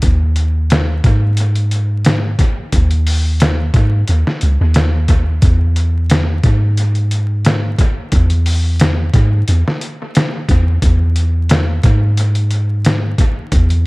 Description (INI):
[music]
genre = trip hop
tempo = 89 BPM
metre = 4/4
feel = swing 53% on 16ths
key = unclear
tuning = A4 = 441 Hz
[part]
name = soft 808-style bass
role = bass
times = 0.0-13.9 s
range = C#2 to G#2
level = -13 LUFS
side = equal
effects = none
[part]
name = trip hop sampler-style drum kit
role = drums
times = 0.0-13.9 s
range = hi-hat, kick drum, snare drum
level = -15 LUFS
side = equal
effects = small room ambience, dub echo
[sound]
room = digital ambience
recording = echo-heavy mix, vinyl crackle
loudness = -12 LUFS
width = side -24 dB against mid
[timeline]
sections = 0.0-13.9 A section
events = none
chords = none